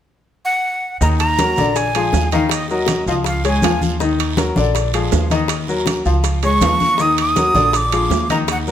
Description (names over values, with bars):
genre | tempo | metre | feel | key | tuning
latin, salsa | 161 BPM | 4/4 | straight | Eb minor | A4 = 440 Hz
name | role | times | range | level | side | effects
breathy bright jazz flute | melody | 0.5-3.8, 6.5-8.7 s | Eb5 to Eb6 | -18 LUFS | right 1 dB | none
bright concert grand piano | accompaniment | 1.0-8.7 s | D3 to F5 | -19 LUFS | left 4 dB | none
upright bass | bass | 1.0-8.7 s | Bb1 to Eb2 | -20 LUFS | right 1 dB | none
bongos | percussion | 1.0-8.7 s | none | -29 LUFS | left 5 dB | none
congas | percussion | 1.0-8.7 s | none | -24 LUFS | left 2 dB | none
guiro | percussion | 1.0-8.7 s | none | -32 LUFS | right 7 dB | none
maracas | percussion | 1.0-8.7 s | none | -32 LUFS | right 12 dB | none
timbales | percussion | 1.2-8.7 s | none | -25 LUFS | right 11 dB | none
room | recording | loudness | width
moderate large studio reverb, RT60 1.1 s | none | -14 LUFS | side -10 dB against mid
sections
0.0-1.0 A section; 1.0-8.7 B section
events
none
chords
0.0 N.C.; 1.0 Ebm; 1.8 Bb7; 2.5 Ebm; 3.3 Db; 4.0 Ebm; 4.8 Bb7; 5.5 Ebm; 6.2 Db; 7.0 Ebm; 7.7 Bb7